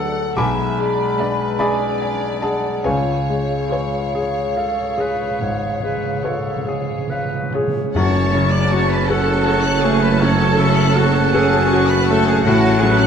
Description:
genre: classical.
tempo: 46-55 BPM (dotted quarters).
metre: 12/8.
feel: rubato.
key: F# minor.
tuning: A4 = 441 Hz.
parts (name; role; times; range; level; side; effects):
bright baby grand piano; melody; 0.0-13.1 s; B1 to D6; -20 LUFS; left 1 dB; none.
rich studio violin section; melody; 0.0-13.1 s; B4 to A5; -29 LUFS; left 5 dB; none.
clear studio violin section; second line; 0.0-13.1 s; F#4 to F#6; -29 LUFS; left 5 dB; none.
mellow hollow silver concert flute; second line; 0.0-13.1 s; E#5 to D6; -26 LUFS; equal; none.
rich studio viola section; accompaniment; 0.0-13.1 s; G#3 to E#4; -27 LUFS; right 2 dB; none.
mellow French horn section; sustained chords; 0.0-13.1 s; F#3 to A4; -26 LUFS; left 4 dB; none.
rich studio cello section; bass; 0.4-13.1 s; G#2 to D5; -24 LUFS; right 2 dB; none.
rich studio double bass section; bass; 0.4-13.1 s; F#1 to C#2; -24 LUFS; right 4 dB; none.
timpani; percussion; 2.9-9.0 s; F#2 to C#3; -27 LUFS; equal; none.
bright clarinet; second line; 4.1-8.0 s; G#4 to C#5; -30 LUFS; left 2 dB; none.
warm oboe; second line; 7.9-13.1 s; C#5 to A5; -24 LUFS; right 5 dB; none.
clear trombone section; sustained chords; 8.0-13.1 s; A2 to F#3; -26 LUFS; right 4 dB; none.
warm tuba; bass; 8.0-13.1 s; F#1 to A1; -24 LUFS; right 4 dB; none.
room: wet scoring stage reverb, RT60 1.9 s.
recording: dark, warm production.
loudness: -15 LUFS.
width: side -7 dB against mid.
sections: 0.0-7.9 A section; 7.9-13.1 B section.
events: timpani fill 2.9-7.9.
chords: 0.4 G#dim/B; 2.9 C#; 7.9 F#m; 12.5 F#m/A.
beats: 0.37 1.60 | 2.85 4.14 5.41 6.67 | 7.95 9.09 10.21 11.33 | 12.46.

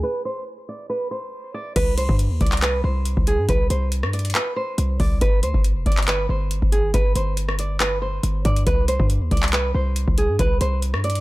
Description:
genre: hip hop, trap.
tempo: 139 BPM.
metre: 4/4.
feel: half-time.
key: unclear.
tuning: A4 = 440 Hz.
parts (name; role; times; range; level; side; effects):
nylon-string guitar; melody; 0.0-11.2 s; Ab4 to D5; -25 LUFS; right 2 dB; low-pass filter.
hard-hitting 808-style bass; bass; 0.0-11.2 s; F1 to G2; -22 LUFS; equal; none.
booming analog drum machine; drums; 1.8-11.2 s; crash cymbal, handclaps, hi-hat, kick drum, rim click; -21 LUFS; equal; none.
room: digital ambience.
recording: low-pass filter.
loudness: -18 LUFS.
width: side -19 dB against mid.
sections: 0.0-1.8 A section; 1.8-11.2 B section.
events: filter sweep 0.0-1.8; break 0.0-1.8.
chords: 0.0 N.C.; 1.8 C5; 5.2 G5; 8.7 C5.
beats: | 0.03 0.47 0.90 1.33 | 1.76 2.19 2.62 3.06 | 3.49 3.92 4.35 4.78 | 5.21 5.64 6.08 6.51 | 6.94 7.37 7.80 8.23 | 8.67 9.10 9.53 9.96 | 10.39 10.82.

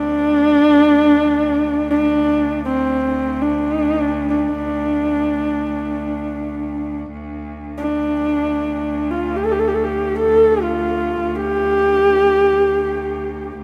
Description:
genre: mongolian traditional, Mongolian folk.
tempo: free time.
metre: none.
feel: none.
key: D yu mode.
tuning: A4 = 442 Hz.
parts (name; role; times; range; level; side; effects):
dark horsehead fiddle; melody; 0.0-13.6 s; C4 to A4; -18 LUFS; equal; none.
rich cello; drone; 0.0-13.6 s; D2; -29 LUFS; equal; none.
room: moderate huge ambient reverb, RT60 4.5 s.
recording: none.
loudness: -18 LUFS.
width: mono.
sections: 0.0-13.6 A section.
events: none.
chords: none.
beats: free time.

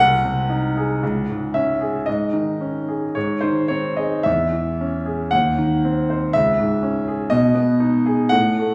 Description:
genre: classical, romantic character piece for solo piano.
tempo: 53-62 BPM.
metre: 2/4.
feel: rubato.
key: unclear.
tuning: A4 = 440 Hz.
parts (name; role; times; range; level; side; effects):
bright concert grand piano; solo; 0.0-8.7 s; B#1 to F#5; -20 LUFS; equal; none.
room: wet recital hall reverb, RT60 1.5 s.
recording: small room reverb.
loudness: -20 LUFS.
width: mono.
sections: 0.0-8.7 A section.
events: none.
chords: 0.0 G#/B#; 1.0 C#m; 2.1 G#sus4; 3.2 G#; 4.3 C#m/E; 5.3 Cdim/Eb; 6.3 C#m; 7.3 G#m/B.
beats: 1.01 | 2.07 3.15 | 4.26 5.32 | 6.35 7.33 | 8.33.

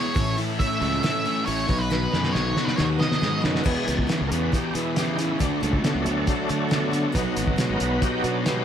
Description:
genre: classic rock.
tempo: 137 BPM.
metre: 4/4.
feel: straight.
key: E major.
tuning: A4 = 439 Hz.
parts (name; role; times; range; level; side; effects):
octave-fuzz lead guitar; melody; 0.0-3.4 s; B4 to E5; -28 LUFS; equal; distortion, analog delay.
picked steel-string acoustic guitar; accompaniment; 0.0-8.6 s; A2 to B4; -34 LUFS; equal; none.
bright tonewheel organ; sustained chords; 0.0-8.6 s; E3 to E5; -30 LUFS; equal; slow rotary speaker, overdrive, chorus vibrato.
raw garage guitar; riff; 0.0-8.6 s; E2 to E4; -31 LUFS; right 15 dB; overdrive, spring reverb.
sludgy distorted guitar; riff; 0.0-8.6 s; E2 to E4; -29 LUFS; left 11 dB; overdrive.
fuzz fingered electric bass; bass; 0.2-8.6 s; G#1 to E3; -28 LUFS; equal; overdrive.
cloth-damped thuddy drum kit; drums; 0.2-8.6 s; crash cymbal, hi-hat, kick drum, snare drum; -26 LUFS; equal; none.
room: light reverb.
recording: none.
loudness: -21 LUFS.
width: side -9 dB against mid.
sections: 0.0-3.7 A section; 3.7-8.6 B section.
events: half time 0.0-3.7; drum fill 1.9-3.7; tonewheel organ solo 3.7-8.6.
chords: 0.2 A; 1.7 B; 3.7 E; 5.4 D; 7.2 B.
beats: | 0.16 0.60 1.03 1.47 | 1.91 2.35 2.78 3.22 | 3.66 4.09 4.53 4.97 | 5.41 5.84 6.28 6.72 | 7.15 7.59 8.03 8.46.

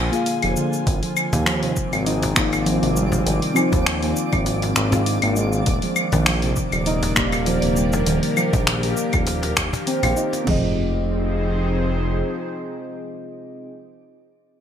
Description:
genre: organic downtempo.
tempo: 100 BPM.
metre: 4/4.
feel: swing 54% on 16ths.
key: F dorian.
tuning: A4 = 440 Hz.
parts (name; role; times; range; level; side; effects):
airy breathy pad; sustained chords; 0.0-13.6 s; D3 to Ab5; -28 LUFS; left 2 dB; chorus, sidechain pumping.
smooth synth bass; bass; 0.0-12.2 s; Eb1 to Eb2; -24 LUFS; equal; sidechain pumping.
muted felt-like synth keys; accompaniment; 0.1-13.7 s; Bb3 to Ab5; -26 LUFS; left 2 dB; chorus, sidechain pumping, digital delay.
deep house drum kit; drums; 0.1-10.4 s; claves, finger snaps, hi-hat, shaker; -23 LUFS; left 1 dB; gated reverb.
handpan; arpeggios; 0.4-10.7 s; C3 to F4; -24 LUFS; right 2 dB; digital delay.
deep house drum kit; drums; 0.9-10.6 s; crash cymbal, kick drum, toms; -24 LUFS; equal; none.
twinkling granular texture; texture; 1.9-10.5 s; D4 to D6; -33 LUFS; left 1 dB; built-in reverb, wide subtle chorus.
cajon; percussion; 1.3-10.4 s; none; -26 LUFS; left 2 dB; none.
room: light reverb.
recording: bright 1980s-style digital production.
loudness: -18 LUFS.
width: side -9 dB against mid.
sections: 0.0-10.5 A section; 10.5-12.9 B section.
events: none.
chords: 0.0 Bb7; 0.9 Ab6; 5.7 Ebmaj7; 10.5 Fm7.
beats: 0.27 | 0.86 1.47 2.06 2.67 | 3.27 3.87 4.46 5.07 | 5.67 6.26 6.87 7.46 | 8.06 8.66 9.27 9.87 | 10.46 11.06 11.66 12.27.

